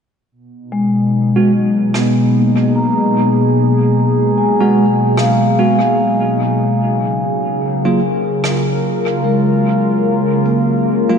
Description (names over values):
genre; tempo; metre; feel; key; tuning
ambient dub; 74 BPM; 4/4; swing 57% on 16ths; G# dorian; A4 = 438 Hz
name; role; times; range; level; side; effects
warbly tape-like pad; sustained chords; 0.7-11.2 s; B2 to A#4; -15 LUFS; equal; chorus, built-in reverb
vibraphone with soft mallets; arpeggios; 0.7-11.2 s; G#3 to A#5; -16 LUFS; left 2 dB; low-pass filter, diffuse ambient delay
bell-like tine electric piano; stabs; 1.4-11.2 s; F#3 to F#4; -19 LUFS; right 4 dB; lush chorus, low-pass filter, dub echo
rim click; drums; 1.9-8.6 s; none; -27 LUFS; right 2 dB; dub echo
room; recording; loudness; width
moderate lush hall reverb, RT60 2.7 s; dreamy mix soaked in reverb, nothing above 10.8 kHz; -12 LUFS; side -6 dB against mid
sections
0.3-11.2 A section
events
none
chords
0.3 G#m7; 6.8 F#maj7